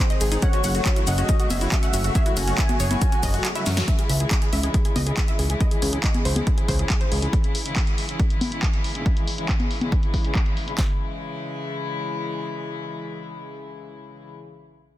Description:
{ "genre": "uplifting trance", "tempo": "139 BPM", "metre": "4/4", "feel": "straight", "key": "C# harmonic minor", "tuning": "A4 = 440 Hz", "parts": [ { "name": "wide unison pluck", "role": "melody", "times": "0.0-7.3 s", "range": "F#4 to F#5", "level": "-30 LUFS", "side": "equal", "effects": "cassette tape, sidechain pumping, tape echo" }, { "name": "warm velvety synth lead", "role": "second line", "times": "0.0-3.8 s", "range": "B#4 to G#5", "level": "-30 LUFS", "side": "equal", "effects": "chorus, tape echo" }, { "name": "warm chamber string section", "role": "sustained chords", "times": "0.0-14.3 s", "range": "B#2 to F#4", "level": "-30 LUFS", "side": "left 2 dB", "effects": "sidechain pumping" }, { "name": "analog pluck", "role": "arpeggios", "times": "0.0-3.8 s", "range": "C#4 to G#4", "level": "-35 LUFS", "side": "left 2 dB", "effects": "chorus, sidechain pumping, tape echo" }, { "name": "punchy analog drum machine", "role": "drums", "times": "0.1-10.8 s", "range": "congas, handclaps, hi-hat, ride cymbal, shaker, snare drum", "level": "-28 LUFS", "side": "left 1 dB", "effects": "low-pass filter on hats, low-pass filter on perc, low-pass filter on snare, low-pass filter on cymbals" }, { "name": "fat analog bass", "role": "bass", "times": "0.2-7.3 s", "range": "F#1 to F#2", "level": "-23 LUFS", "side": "equal", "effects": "sidechain pumping" }, { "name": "punchy analog drum machine", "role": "drums", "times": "0.4-10.9 s", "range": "handclaps, kick drum, snare drum", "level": "-22 LUFS", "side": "equal", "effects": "none" } ], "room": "little or no reverb", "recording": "dense, heavily limited modern master", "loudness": "-20 LUFS", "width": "side -14 dB against mid", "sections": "0.0-3.9 A section; 3.9-10.8 B section; 10.8-14.2 C section", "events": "drop 0.0-3.9; kick drops out 3.4-3.9; drum fill 3.7", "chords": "0.4 F#m; 3.9 C#m", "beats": "| 0.42 0.86 1.29 1.72 | 2.15 2.58 3.02 3.45 | 3.88 4.31 4.74 5.17 | 5.61 6.04 6.47 6.90 | 7.33 7.76 8.20 8.63 | 9.06 9.49 9.92 10.35 | 10.79 11.22 11.65 12.08 | 12.51 12.94 13.38 13.81" }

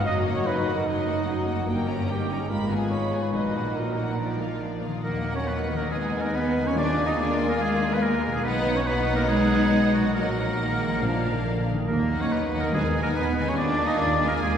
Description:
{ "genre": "classical, dramatic, fast romantic movement for symphony orchestra", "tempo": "142 BPM", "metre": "4/4", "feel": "rubato", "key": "Eb minor", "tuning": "A4 = 440 Hz", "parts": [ { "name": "rich symphonic violin section", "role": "melody", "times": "0.0-14.6 s", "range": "D5 to Cb6", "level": "-37 LUFS", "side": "left 1 dB", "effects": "none" }, { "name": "rich symphonic violin section", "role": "second line", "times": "0.0-14.6 s", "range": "D4 to Ab4", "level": "-33 LUFS", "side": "left 3 dB", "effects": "none" }, { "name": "rich studio viola section", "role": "accompaniment", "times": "0.0-14.6 s", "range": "F3 to Db4", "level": "-32 LUFS", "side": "equal", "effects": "none" }, { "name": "concert harp", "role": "arpeggios", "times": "0.0-14.6 s", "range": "Gb2 to Eb5", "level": "-33 LUFS", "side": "left 2 dB", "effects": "none" }, { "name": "rich symphonic cello section", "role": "bass", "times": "0.0-14.6 s", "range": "Gb2 to Eb4", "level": "-28 LUFS", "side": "equal", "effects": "none" }, { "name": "rich symphonic double bass section", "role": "bass", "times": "0.0-14.6 s", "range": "Gb1 to Eb2", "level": "-31 LUFS", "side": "right 2 dB", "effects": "none" }, { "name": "dark French horn section", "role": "sustained chords", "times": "0.1-14.6 s", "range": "D3 to Gb4", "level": "-31 LUFS", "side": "equal", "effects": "none" }, { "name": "warm trumpet", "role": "stabs", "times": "0.1-4.8 s", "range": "Eb4 to Eb5", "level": "-31 LUFS", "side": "right 1 dB", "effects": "none" }, { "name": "clear oboe", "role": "second line", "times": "5.0-14.6 s", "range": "F#4 to Eb5", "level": "-29 LUFS", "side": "equal", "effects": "none" }, { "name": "timpani", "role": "percussion", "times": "6.8-7.4, 11.0-13.3 s", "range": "Bb2 to Eb3", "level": "-32 LUFS", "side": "equal", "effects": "none" } ], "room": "wet concert hall reverb, RT60 2.5 s", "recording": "recorded in a church or concert hall", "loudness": "-22 LUFS", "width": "side -8 dB against mid", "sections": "0.0-5.0 A section; 5.0-14.6 B section", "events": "none", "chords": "0.1 Ebm/Gb; 1.7 Eb7/G; 2.5 Abm; 3.3 Ebm/Bb; 4.2 Bb; 5.0 Ebm; 5.9 Abm/Eb; 6.8 Bb7/Eb; 8.5 B; 10.2 Ebm/Bb; 11.0 Bb; 11.9 Ebm; 12.7 Abm/Eb; 13.6 Bb7/Eb", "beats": "| 0.07 0.47 0.87 1.27 | 1.68 2.09 2.50 2.91 | 3.34 3.76 4.19 4.61 | 5.04 5.47 5.91 6.34 | 6.77 7.19 7.61 8.03 | 8.45 8.88 9.30 9.72 | 10.15 10.59 11.02 11.46 | 11.89 12.32 12.75 13.17 | 13.59 14.00 14.41" }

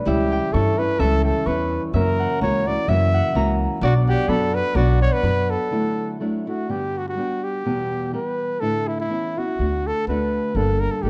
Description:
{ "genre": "mexican folk, mariachi", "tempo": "126 BPM", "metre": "2/4", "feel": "swing 54% on 8ths", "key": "B minor, D major from 5.7 s", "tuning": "A4 = 438 Hz", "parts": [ { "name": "nylon-string guitar", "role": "accompaniment", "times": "0.0-11.1 s", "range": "E2 to A4", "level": "-28 LUFS", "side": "equal", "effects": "none" }, { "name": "concert harp", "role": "arpeggios", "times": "0.0-6.6 s", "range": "D5 to C#6", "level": "-30 LUFS", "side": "equal", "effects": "none" }, { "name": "mellow trumpet", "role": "melody", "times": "0.1-11.1 s", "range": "E4 to E5", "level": "-26 LUFS", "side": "equal", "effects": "none" }, { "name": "upright bass", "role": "bass", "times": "0.1-5.5, 9.6-11.1 s", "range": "G1 to G2", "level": "-24 LUFS", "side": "equal", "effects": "none" } ], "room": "light reverb", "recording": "dark, warm production", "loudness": "-21 LUFS", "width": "mono", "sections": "0.0-5.7 A section; 5.7-11.1 B section", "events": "none", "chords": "0.1 C#dim; 1.9 F#7; 3.8 Bm; 5.7 Dadd9; 6.7 G; 7.6 Em; 8.6 Asus4; 9.1 Bsus24/E; 9.6 D; 10.6 Gmadd9", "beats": "| 0.07 0.53 | 0.99 1.46 | 1.93 2.41 | 2.89 3.36 | 3.83 4.29 | 4.77 5.24 | 5.72 6.21 | 6.69 7.17 | 7.65 8.13 | 8.61 9.10 | 9.59 10.07 | 10.55 11.03" }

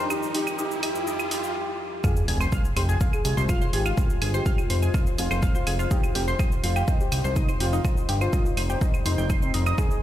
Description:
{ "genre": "melodic techno", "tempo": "124 BPM", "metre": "4/4", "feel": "straight", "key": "F minor", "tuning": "A4 = 443 Hz", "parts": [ { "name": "deep dark ambient pad", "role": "sustained chords", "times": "0.0-10.0 s", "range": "F2 to C5", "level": "-34 LUFS", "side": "left 2 dB", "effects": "chorus, built-in reverb, sidechain pumping" }, { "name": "tight sequenced synth", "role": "arpeggios", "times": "0.0-9.9 s", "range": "Eb4 to G6", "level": "-32 LUFS", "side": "equal", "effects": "chorus, phaser, sidechain pumping, ping-pong delay" }, { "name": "riser and sub drop", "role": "sound effects", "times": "0.0-4.0 s", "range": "none", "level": "-31 LUFS", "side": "equal", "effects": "none" }, { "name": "expressive synth lead", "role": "melody", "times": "0.1-10.0 s", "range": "C4 to Ab4", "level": "-32 LUFS", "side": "equal", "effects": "lush chorus, sidechain pumping, ping-pong delay" }, { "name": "electronic shaker, claves and hi-hat", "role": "drums", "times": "0.1-10.0 s", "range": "none", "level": "-33 LUFS", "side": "right 2 dB", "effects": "sidechain pumping on perc, sidechain pumping on hats" }, { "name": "electronic kick drum", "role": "drums", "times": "2.0-9.9 s", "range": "none", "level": "-24 LUFS", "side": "equal", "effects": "none" }, { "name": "fat analog bass", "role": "bass", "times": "2.3-9.7 s", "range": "F1 to C2", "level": "-24 LUFS", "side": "equal", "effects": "sidechain pumping" } ], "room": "light reverb", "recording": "played on a big sound system in a bare room, large studio reverb", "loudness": "-22 LUFS", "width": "side -12 dB against mid", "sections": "0.0-2.0 A section; 2.0-10.0 B section", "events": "build-up 0.0-2.0; riser 0.0-1.6; stop 1.6-2.0; drop 2.0-10.0; impact 2.0-4.0", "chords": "0.0 Eb/F; 2.0 Fm; 5.9 Cm/F", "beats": "| 0.10 0.59 1.07 1.56 | 2.04 2.52 3.01 3.49 | 3.98 4.46 4.94 5.43 | 5.91 6.39 6.88 7.36 | 7.85 8.33 8.81 9.30 | 9.78" }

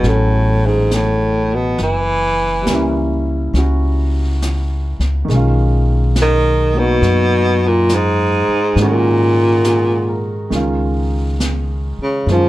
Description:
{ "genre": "jazz ballad", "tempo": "69 BPM", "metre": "4/4", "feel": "swing 67% on 8ths", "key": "unclear", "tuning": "A4 = 440 Hz", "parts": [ { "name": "warm baritone saxophone", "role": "melody", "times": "0.0-12.5 s", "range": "G#2 to E#3", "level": "-15 LUFS", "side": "equal", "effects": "none" }, { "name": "clear baby grand piano", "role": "accompaniment", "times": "0.0-12.5 s", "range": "D#3 to A#4", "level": "-22 LUFS", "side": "right 1 dB", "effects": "none" }, { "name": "upright bass", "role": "bass", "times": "0.0-12.5 s", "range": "F#1 to G#2", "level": "-16 LUFS", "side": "equal", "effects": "none" }, { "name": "jazz brush drum kit", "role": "drums", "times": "0.0-12.5 s", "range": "brushed snare drum, hi-hat, snare drum", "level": "-26 LUFS", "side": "right 1 dB", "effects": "none" } ], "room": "light reverb", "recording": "dark, warm production", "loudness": "-13 LUFS", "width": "side -16 dB against mid", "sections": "0.0-12.5 A section", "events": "none", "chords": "0.0 F#m11; 1.8 F#7b9; 5.3 Bmaj7; 8.8 G#9sus4; 10.5 C#add9", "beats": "0.03 0.91 | 1.78 2.66 3.54 4.41 | 5.28 6.15 7.02 7.89 | 8.77 9.64 10.52 11.40 | 12.28" }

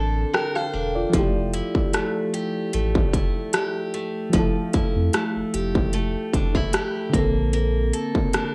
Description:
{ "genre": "contemporary R&B", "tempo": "75 BPM", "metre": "4/4", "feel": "swing 54% on 16ths", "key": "F major", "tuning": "A4 = 438 Hz", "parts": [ { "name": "mellow FM electric piano", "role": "accompaniment", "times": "0.0-8.5 s", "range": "D3 to G5", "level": "-29 LUFS", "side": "equal", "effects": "chorus, cassette tape" }, { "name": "picked steel-string acoustic guitar", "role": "arpeggios", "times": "0.0-8.5 s", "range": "F3 to C5", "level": "-30 LUFS", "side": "equal", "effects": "cassette tape" }, { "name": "warm sub bass", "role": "bass", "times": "0.0-8.2 s", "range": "E1 to F2", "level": "-28 LUFS", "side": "equal", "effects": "none" }, { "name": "industrial drum kit", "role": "drums", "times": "0.3-8.5 s", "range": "hi-hat, kick drum, rim click", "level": "-25 LUFS", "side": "equal", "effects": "distortion" } ], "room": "light reverb", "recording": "home recording on cassette", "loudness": "-23 LUFS", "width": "mono", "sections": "0.0-8.5 A section", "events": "break 0.0-1.1", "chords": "0.0 Bbmaj9; 1.1 Fmaj9; 7.1 Bbmaj9", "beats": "0.34 | 1.14 1.94 2.74 3.54 | 4.34 5.14 5.94 6.74 | 7.54 8.34" }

